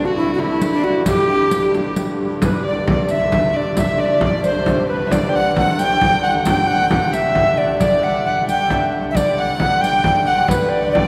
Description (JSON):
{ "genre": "medieval dance", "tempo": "89 BPM (dotted quarters)", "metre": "6/8", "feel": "straight", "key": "G major", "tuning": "A4 = 440 Hz", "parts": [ { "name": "tenor recorder", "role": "melody", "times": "0.0-11.1 s", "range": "D4 to G5", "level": "-20 LUFS", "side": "equal", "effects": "none" }, { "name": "concert harp", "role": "second line", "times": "0.0-11.1 s", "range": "C4 to G5", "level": "-26 LUFS", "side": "equal", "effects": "none" }, { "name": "rich fiddle", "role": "second line", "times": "0.0-11.1 s", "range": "E4 to G5", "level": "-30 LUFS", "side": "equal", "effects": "none" }, { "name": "dark hurdy-gurdy", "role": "drone", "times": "0.0-11.1 s", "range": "G2 to D3+22c", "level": "-28 LUFS", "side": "equal", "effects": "none" }, { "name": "frame drum", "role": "percussion", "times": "0.2-11.1 s", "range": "none", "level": "-24 LUFS", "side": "equal", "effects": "none" }, { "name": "riq", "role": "percussion", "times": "0.6-10.7 s", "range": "none", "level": "-30 LUFS", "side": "equal", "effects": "none" } ], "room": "wet cathedral reverb, RT60 7.0 s", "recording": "heard from further back in the room", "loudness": "-17 LUFS", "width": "mono", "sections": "0.0-2.4 A section; 2.4-11.1 B section", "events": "none", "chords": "none" }